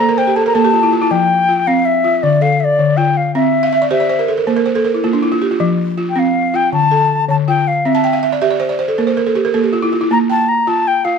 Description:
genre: west african traditional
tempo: 107 BPM (dotted quarters)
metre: 12/8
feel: straight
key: F major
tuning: A4 = 440 Hz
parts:
  - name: wooden flute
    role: melody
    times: 0.0-11.2 s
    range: D5 to Bb5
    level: -14 LUFS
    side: left 4 dB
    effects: none
  - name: balafon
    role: arpeggios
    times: 0.0-11.2 s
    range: D3 to A5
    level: -14 LUFS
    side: right 2 dB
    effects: none
room: moderate recital hall reverb, RT60 1.4 s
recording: close, detailed microphones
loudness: -12 LUFS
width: side -6 dB against mid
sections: 0.0-1.1 A section; 1.1-10.1 B section; 10.1-11.2 C section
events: balafon fill 0.0-1.1, 3.6-5.6, 7.9-10.1; flute solo 0.0-1.1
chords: 0.0 N.C.; 1.1 F5; 2.2 Dm; 3.4 C; 4.5 N.C.; 5.6 F5; 6.7 Dm; 7.8 C; 9.0 N.C.; 10.1 Bb5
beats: 0.55 | 1.11 1.67 2.23 2.79 | 3.35 3.92 4.48 5.04 | 5.60 6.16 6.72 7.29 | 7.85 8.41 8.98 9.54 | 10.11 10.67

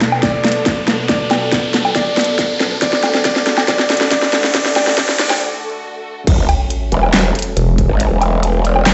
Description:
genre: heavy wobble dubstep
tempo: 139 BPM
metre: 4/4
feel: half-time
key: F# minor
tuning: A4 = 442 Hz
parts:
  - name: rich symphonic string section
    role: sustained chords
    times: 0.0-8.9 s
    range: D2 to A4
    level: -26 LUFS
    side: equal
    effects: sidechain pumping, low-pass filter
  - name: dubstep drum kit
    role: drums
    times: 0.0-8.9 s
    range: crash cymbal, handclaps, hi-hat, snare drum, woodblock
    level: -18 LUFS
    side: equal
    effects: overdrive, small room ambience
  - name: riser and sub drop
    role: sound effects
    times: 0.0-8.0 s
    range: none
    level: -26 LUFS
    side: equal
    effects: none
  - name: bright concert grand piano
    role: melody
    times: 0.2-5.4 s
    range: D5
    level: -22 LUFS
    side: equal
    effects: vintage 12-bit sampler grit, tape echo
  - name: electronic kick drum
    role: drums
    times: 0.2-7.9 s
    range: none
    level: -23 LUFS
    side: equal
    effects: distortion, small room ambience
  - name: growl bass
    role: bass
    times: 6.3-8.9 s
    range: E1 to G#1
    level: -17 LUFS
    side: equal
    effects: chorus, overdrive
  - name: vowel-sweep wobble bass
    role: bass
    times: 7.6-7.9 s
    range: E1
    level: -15 LUFS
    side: equal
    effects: chorus, overdrive
room: moderate digital room reverb, RT60 0.9 s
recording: played on a big sound system in a bare room, stone room reverb, high-pass filter, nothing above 8.0 kHz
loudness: -15 LUFS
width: mono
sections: 0.0-6.3 A section; 6.3-8.9 B section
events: build-up 0.0-6.3; drum fill 0.0-5.4; riser 0.0-5.4; filter sweep 0.0-6.3; break 5.4-6.3; drop 6.3-8.9; impact 6.3-8.0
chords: 0.0 Bm7; 2.8 D; 6.3 F#m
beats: 0.23 0.66 | 1.09 1.52 1.96 2.39 | 2.82 3.25 3.68 4.11 | 4.55 4.98 5.41 5.84 | 6.27 6.70 7.14 7.57 | 8.00 8.43 8.86

